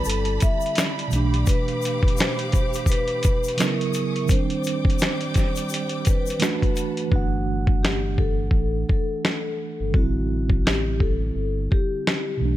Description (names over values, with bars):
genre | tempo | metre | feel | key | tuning
lo-fi hip hop | 85 BPM | 4/4 | swing 59% on 16ths | G major | A4 = 440 Hz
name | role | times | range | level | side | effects
vibraphone with soft mallets | melody | 0.0-12.6 s | F#4 to E5 | -29 LUFS | left 2 dB | none
mellow tine electric piano | accompaniment | 0.0-12.6 s | B2 to F#5 | -27 LUFS | right 4 dB | medium stereo tremolo, cassette tape
warm studio string section | sustained chords | 0.0-7.1 s | G3 to D#6 | -33 LUFS | equal | none
tube shaker | percussion | 0.0-7.0 s | none | -37 LUFS | left 13 dB | none
sub bass with octave | bass | 0.1-1.4, 7.1-12.6 s | G1 to B1 | -25 LUFS | equal | none
lo-fi sampler-style drum kit | drums | 0.1-12.3 s | finger snaps, hi-hat, kick drum, snare drum | -22 LUFS | equal | none
room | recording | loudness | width
small room ambience | none | -20 LUFS | side -14 dB against mid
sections
0.0-7.1 A section; 7.1-12.6 B section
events
hi-hats muted 7.1-12.6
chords
0.0 Am11; 1.1 G7/B; 3.6 C#madd9; 4.3 Cmadd9; 6.4 Gmaj9; 7.1 Gsus2; 9.9 Am7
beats
0.06 0.77 | 1.47 2.18 2.88 3.59 | 4.29 5.00 5.71 6.41 | 7.12 7.82 8.53 9.23 | 9.94 10.65 11.35 12.06